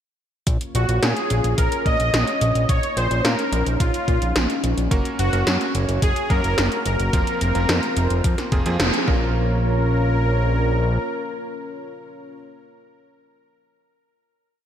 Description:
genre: synthwave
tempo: 108 BPM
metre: 4/4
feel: straight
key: Bb minor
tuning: A4 = 440 Hz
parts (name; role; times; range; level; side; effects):
- warm analog pad; sustained chords; 0.5-12.3 s; Bb3 to Db5; -29 LUFS; equal; chorus, sidechain pumping
- fat analog bass; bass; 0.5-11.0 s; F1 to Bb2; -21 LUFS; equal; tube saturation, sidechain pumping
- 80s electronic pad drums; drums; 0.5-9.0 s; hi-hat, snare drum; -25 LUFS; equal; none
- electronic kick drum; drums; 0.5-9.2 s; none; -22 LUFS; equal; overdrive
- soft supersaw; melody; 0.8-12.3 s; F4 to Eb5; -25 LUFS; equal; digital delay
- bright electric grand piano; stabs; 4.9-12.3 s; F3 to Bb4; -30 LUFS; right 3 dB; vintage 12-bit sampler grit, digital delay
room: moderate plate reverb, RT60 2.4 s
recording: bright 1980s-style digital production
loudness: -18 LUFS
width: side -9 dB against mid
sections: 0.5-9.4 verse; 9.4-11.6 final hit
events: band accent 8.8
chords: 0.5 Bbm; 4.9 Gb; 7.1 Fsus4; 9.1 Bbm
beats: | 0.47 1.02 1.58 2.13 | 2.69 3.25 3.80 4.36 | 4.91 5.47 6.02 6.58 | 7.13 7.69 8.25 8.80 | 9.36 9.91 10.47 11.02

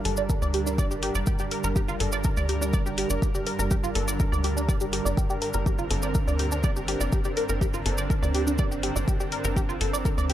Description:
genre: melodic techno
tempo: 123 BPM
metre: 4/4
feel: straight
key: G minor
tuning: A4 = 436 Hz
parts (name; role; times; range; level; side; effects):
- lush unison pad; sustained chords; 0.0-10.3 s; G3 to Bb4; -32 LUFS; right 2 dB; chorus, sidechain pumping
- swarming drone; drone; 0.0-10.3 s; G2 to D3; -38 LUFS; right 1 dB; built-in reverb, sidechain pumping
- tight sequenced synth; arpeggios; 0.1-10.3 s; D4 to D5; -30 LUFS; equal; chorus, phaser, sidechain pumping, digital delay
- tight sequencer bass; bass; 0.1-10.3 s; G1 to D2; -29 LUFS; equal; tube saturation, sidechain pumping
- electronic hi-hat; drums; 0.1-10.3 s; none; -32 LUFS; left 2 dB; none
- cabasa; percussion; 0.2-10.3 s; none; -35 LUFS; right 1 dB; none
- electronic kick drum; drums; 0.3-10.2 s; none; -26 LUFS; equal; none
room: digital ambience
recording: dark, warm production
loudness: -23 LUFS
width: side -12 dB against mid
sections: 0.0-10.3 A section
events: none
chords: 0.0 Gm; 5.7 Bbadd9/G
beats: 0.30 0.78 1.27 | 1.76 2.25 2.73 3.22 | 3.71 4.20 4.69 5.17 | 5.66 6.15 6.64 7.12 | 7.61 8.10 8.59 9.08 | 9.56 10.05

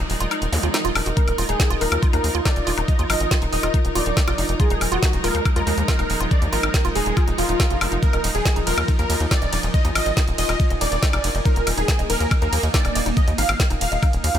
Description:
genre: psychedelic trance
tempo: 140 BPM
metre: 4/4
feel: straight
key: unclear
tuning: A4 = 440 Hz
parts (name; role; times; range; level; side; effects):
- pulsing gated texture; sustained chords; 0.0-14.4 s; F3 to F4; -30 LUFS; right 1 dB; chorus, built-in reverb, sidechain pumping
- woody wave-folded pluck; riff; 0.0-14.4 s; D4 to Eb5; -30 LUFS; moving between left 4 dB and right 6 dB; chorus, auto-pan, sidechain pumping, dub echo
- tight sequencer bass; bass; 0.0-14.4 s; Eb1 to Eb2; -24 LUFS; equal; none
- bright symphonic string section; texture; 0.0-14.4 s; Eb4 to Bb5; -30 LUFS; equal; sidechain pumping
- drum and bass drum kit; drums; 0.1-14.4 s; hi-hat, ride cymbal, snare drum, woodblock; -25 LUFS; left 1 dB; overdrive
- zap; sound effects; 0.5-0.6 s; none; -31 LUFS; right 1 dB; none
- wide unison lead; melody; 1.2-14.4 s; F4 to F5; -25 LUFS; equal; phaser, sidechain pumping, tape echo
- electronic kick drum; drums; 1.2-14.1 s; none; -19 LUFS; equal; overdrive
- vowel-sweep wobble bass; second line; 4.0-4.5, 10.8-10.9 s; Bb3 to Eb4; -39 LUFS; right 5 dB; none
room: little or no reverb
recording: none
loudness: -18 LUFS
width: side -10 dB against mid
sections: 0.0-14.4 A section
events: kick drops out 0.3-1.2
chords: 0.0 Eb5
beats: 0.31 0.74 | 1.17 1.60 2.03 2.46 | 2.88 3.31 3.74 4.17 | 4.60 5.03 5.46 5.88 | 6.31 6.74 7.17 7.60 | 8.03 8.46 8.88 9.31 | 9.74 10.17 10.60 11.03 | 11.46 11.88 12.31 12.74 | 13.17 13.60 14.03

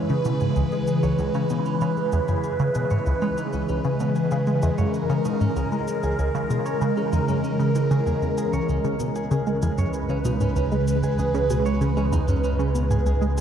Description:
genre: ambient, sequencer-driven space music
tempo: 96 BPM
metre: 4/4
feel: straight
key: C# dorian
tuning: A4 = 440 Hz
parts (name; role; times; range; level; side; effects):
- phased analog pad; sustained chords; 0.0-13.4 s; C#3 to B4; -23 LUFS; equal; phaser, chorus
- clean electric guitar; arpeggios; 0.0-13.4 s; C#4 to C#5; -36 LUFS; right 2 dB; auto-pan, tape echo
- tight sequenced synth; riff; 0.1-13.3 s; C#2 to G#3; -25 LUFS; equal; chorus, tape echo
- cabasa and congas; percussion; 0.1-13.4 s; none; -44 LUFS; equal; tape echo
- warm sub bass; bass; 8.7-13.4 s; C#2; -27 LUFS; equal; none
room: wet lush hall reverb, RT60 2.5 s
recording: dreamy mix soaked in reverb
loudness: -21 LUFS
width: side -8 dB against mid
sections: 0.0-13.4 A section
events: fade-in on clean electric guitar 0.0-13.4; fade-in on drum 0.0-13.4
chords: 0.0 C#m7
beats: 0.56 | 1.19 1.81 2.44 3.06 | 3.69 4.31 4.94 5.56 | 6.19 6.81 7.44 8.06 | 8.69 9.31 9.94 10.56 | 11.19 11.81 12.44 13.06

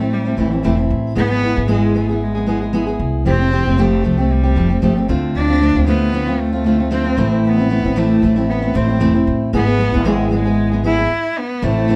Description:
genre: acoustic pop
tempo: 115 BPM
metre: 4/4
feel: swing 55% on 16ths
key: unclear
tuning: A4 = 441 Hz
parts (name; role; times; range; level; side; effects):
- dark cello; melody; 0.0-12.0 s; E3 to E4; -22 LUFS; equal; none
- fingerpicked steel-string acoustic guitar; accompaniment; 0.0-12.0 s; A2 to G#4; -19 LUFS; equal; none
- upright bass; bass; 0.0-12.0 s; E1 to D2; -22 LUFS; equal; none
- clear woodwind section; sustained chords; 11.6-12.0 s; E4 to A5; -26 LUFS; equal; none
room: moderate studio reverb, RT60 0.5 s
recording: band playing live in one room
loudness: -16 LUFS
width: mono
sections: 0.0-11.6 A section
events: stop 11.1-11.6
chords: 0.0 Am; 1.2 E/G#; 3.3 Fadd9; 5.1 Dm7; 7.2 Am; 9.5 E/G#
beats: 0.12 0.64 | 1.16 1.69 2.21 2.73 | 3.26 3.78 4.30 4.83 | 5.35 5.87 6.39 6.92 | 7.44 7.96 8.49 9.01 | 9.53 10.05 10.58 11.10 | 11.62

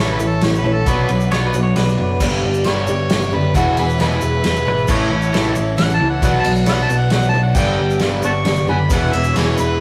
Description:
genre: folk rock and heartland rock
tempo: 134 BPM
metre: 3/4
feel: straight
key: A major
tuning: A4 = 439 Hz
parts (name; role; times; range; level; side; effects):
- overdriven harmonica; melody; 0.0-9.8 s; F#4 to C#6; -24 LUFS; equal; none
- picked twelve-string acoustic guitar; accompaniment; 0.0-9.8 s; E2 to A4; -25 LUFS; equal; none
- mellow tonewheel organ; sustained chords; 0.0-9.8 s; D4 to E6; -33 LUFS; equal; none
- raw garage guitar; riff; 0.0-9.8 s; E2 to B3; -23 LUFS; equal; overdrive
- picked electric bass; bass; 0.0-9.8 s; E1 to C#2; -23 LUFS; equal; none
- tube shaker; percussion; 0.2-9.7 s; none; -40 LUFS; equal; none
- unplugged drum kit; drums; 0.4-9.5 s; crash cymbal, kick drum, ride cymbal, snare drum; -24 LUFS; equal; none
- pedal steel guitar; second line; 1.3-2.5, 4.7-5.5 s; B4 to C#5; -27 LUFS; equal; none
room: wet stone room reverb, RT60 1.1 s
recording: rough rehearsal-room recording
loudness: -17 LUFS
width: mono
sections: 0.0-9.8 A section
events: harmonica solo 0.0-9.8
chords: 0.0 A; 0.9 Bm; 2.2 G; 3.6 E; 4.9 A; 6.2 Bm; 7.6 G; 8.9 E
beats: 0.43 | 0.87 1.32 1.77 | 2.21 2.66 3.10 | 3.55 4.00 4.45 | 4.89 5.34 5.78 | 6.23 6.68 7.12 | 7.57 8.02 8.46 | 8.91 9.36 9.80

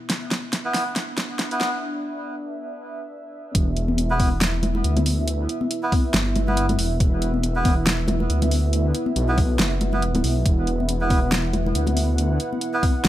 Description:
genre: deep dubstep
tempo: 139 BPM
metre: 4/4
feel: swing 56% on 16ths, half-time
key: unclear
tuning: A4 = 439 Hz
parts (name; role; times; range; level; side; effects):
- dark analog pad; sustained chords; 0.0-13.1 s; B3 to F#5; -28 LUFS; right 1 dB; chorus
- deep house drum kit; drums; 0.1-13.1 s; hi-hat, snare drum; -25 LUFS; equal; overdrive, small room ambience
- melodica; stabs; 0.6-12.8 s; B3 to B4; -28 LUFS; right 1 dB; low-pass filter, dub echo
- dark detuned saw bass; bass; 3.5-13.1 s; E1 to D2; -22 LUFS; equal; none
- electronic kick drum; drums; 3.5-12.9 s; none; -20 LUFS; equal; small room ambience
- congas; percussion; 3.9-12.9 s; none; -28 LUFS; left 3 dB; dub echo
room: light reverb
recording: high-pass filter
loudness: -20 LUFS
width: side -13 dB against mid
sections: 0.0-3.5 A section; 3.5-13.1 B section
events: build-up 0.0-3.5; drum fill 0.0-1.8; filter sweep on analog synth pad 0.0-3.5; break 1.8-3.5; drop 3.5-13.1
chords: 0.0 E5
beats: | 0.10 0.53 0.96 1.39 | 1.82 2.25 2.69 3.12 | 3.55 3.98 4.41 4.84 | 5.28 5.71 6.14 6.57 | 7.00 7.43 7.87 8.30 | 8.73 9.16 9.59 10.02 | 10.46 10.89 11.32 11.75 | 12.18 12.61 13.05

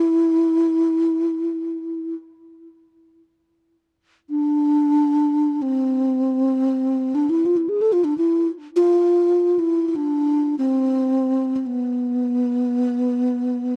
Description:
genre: world meditative, free-time meditation music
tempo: free time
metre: none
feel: none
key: unclear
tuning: A4 = 440 Hz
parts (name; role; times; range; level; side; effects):
- breathy mellow bass flute; solo; 0.0-13.8 s; B3 to A4; -20 LUFS; equal; none
room: light reverb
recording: worn, warbling old tape, cassette tape, warbly pitch drift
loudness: -20 LUFS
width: mono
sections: 0.0-13.8 A section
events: none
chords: none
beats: free time

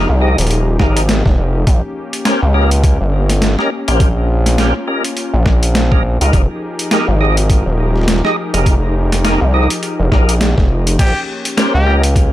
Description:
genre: glitch hop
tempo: 103 BPM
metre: 4/4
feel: swing 58% on 16ths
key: Bb dorian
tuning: A4 = 440 Hz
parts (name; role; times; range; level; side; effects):
- warm analog pad; sustained chords; 0.0-12.3 s; F3 to Bb4; -23 LUFS; left 2 dB; chorus, sidechain pumping
- percussive tonewheel organ; stabs; 0.0-12.0 s; Db4 to Eb5; -20 LUFS; equal; overdrive, chorus vibrato, slow rotary speaker, vintage 12-bit sampler grit, sidechain pumping, tape echo
- gritty driven synth bass; bass; 0.0-12.3 s; Eb1 to Db2; -13 LUFS; equal; overdrive
- boom bap sampler-style drum kit; drums; 0.4-12.3 s; crash cymbal, hi-hat, snare drum; -19 LUFS; equal; overdrive, small room ambience
- electronic kick drum; drums; 0.8-12.3 s; none; -12 LUFS; equal; overdrive, small room ambience
- clear trumpet; melody; 11.0-11.9 s; G4; -21 LUFS; equal; vintage 12-bit sampler grit, tape echo
room: little or no reverb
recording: none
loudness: -12 LUFS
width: side -14 dB against mid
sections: 0.0-12.3 A section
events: none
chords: 0.0 Fm11; 1.7 Bbm69; 6.3 Fm11; 11.0 Bbm69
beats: 0.51 1.09 | 1.67 2.25 2.84 3.42 | 4.00 4.58 5.17 5.75 | 6.33 6.92 7.50 8.08 | 8.66 9.24 9.83 10.41 | 10.99 11.57 12.16

